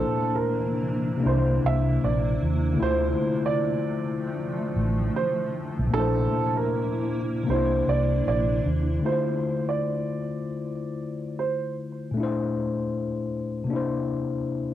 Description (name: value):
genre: lo-fi hip hop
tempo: 77 BPM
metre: 4/4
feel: swing 63% on 16ths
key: D minor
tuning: A4 = 439 Hz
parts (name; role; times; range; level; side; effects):
- warm upright piano; melody; 0.0-11.7 s; A4 to E5; -29 LUFS; right 6 dB; low-pass filter, cassette tape
- tine electric piano; accompaniment; 0.0-14.7 s; Bb2 to C5; -26 LUFS; left 4 dB; cassette tape, low-pass filter
- granular cloud pad; sustained chords; 0.0-9.0 s; C3 to E4; -33 LUFS; right 2 dB; built-in reverb, low-pass filter, cassette tape
- vintage muted fingered electric bass; bass; 1.3-9.0 s; A1 to Eb2; -25 LUFS; right 1 dB; transformer saturation
room: digital ambience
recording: home recording on cassette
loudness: -23 LUFS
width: side -12 dB against mid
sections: 0.0-9.0 A section; 9.0-14.7 B section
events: none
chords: 0.0 Bbadd9; 1.3 C9; 2.8 Dm7; 5.9 Bbadd9; 7.5 C9; 9.0 Dm7; 12.2 Bbmaj9#11; 13.7 C9